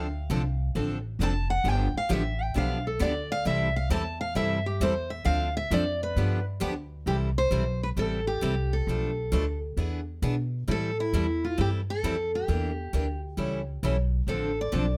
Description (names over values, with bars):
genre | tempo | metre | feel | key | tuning
acoustic string swing (jazz manouche) | 133 BPM | 4/4 | swing 65% on 8ths | C major | A4 = 440 Hz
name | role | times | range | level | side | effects
picked steel-string acoustic guitar | melody | 0.0-15.0 s | E4 to A5 | -32 LUFS | equal | none
picked steel-string acoustic guitar | accompaniment | 0.0-14.8 s | B2 to A4 | -34 LUFS | equal | none
picked steel-string acoustic guitar | accompaniment | 0.0-6.7, 14.3-14.9 s | C3 to A4 | -38 LUFS | equal | none
upright bass | bass | 0.0-15.0 s | F1 to B2 | -31 LUFS | equal | none
room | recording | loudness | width
little or no reverb | close, detailed microphones | -28 LUFS | mono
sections
0.0-7.1 A section; 7.1-15.0 B section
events
steel-string acoustic guitar solo 0.0-7.1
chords
0.0 Dm7; 1.6 G7; 3.5 C6; 5.3 Dm7; 6.2 G7; 7.1 C6; 8.9 Bm7b5; 9.8 E7; 10.7 Am7; 12.5 Em7b5; 13.4 A7; 14.3 Dm7